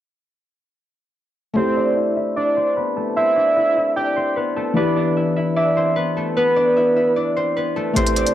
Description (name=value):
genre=hip hop, trap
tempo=150 BPM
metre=4/4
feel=half-time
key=A minor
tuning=A4 = 438 Hz
part: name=felt-muted upright piano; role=accompaniment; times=1.5-8.3 s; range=E3 to C5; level=-24 LUFS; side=left 2 dB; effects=low-pass filter
part: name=concert harp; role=melody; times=1.6-8.3 s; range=A3 to E5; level=-21 LUFS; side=left 1 dB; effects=low-pass filter
part: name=soft octave-layered synth lead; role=second line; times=1.6-8.3 s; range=B4 to G5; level=-20 LUFS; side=right 2 dB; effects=chorus, analog delay
part: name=deep dark ambient pad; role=sustained chords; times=8.2-8.3 s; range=C3 to A3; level=-42 LUFS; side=equal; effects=none
part: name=short 808-style bass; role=bass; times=8.0-8.3 s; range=A1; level=-22 LUFS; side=equal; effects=none
part: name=electronic hi-hat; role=drums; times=8.0-8.3 s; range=none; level=-24 LUFS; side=right 2 dB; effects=vintage 12-bit sampler grit
room=light reverb, small room ambience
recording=dry, gritty hardware recording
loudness=-16 LUFS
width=side -12 dB against mid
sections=1.6-8.0 A section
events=filter sweep 1.6-8.0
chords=1.6 Am7; 4.8 Em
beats=| 1.56 1.96 2.36 2.76 | 3.16 3.56 3.96 4.36 | 4.76 5.16 5.56 5.96 | 6.36 6.76 7.16 7.56 | 7.96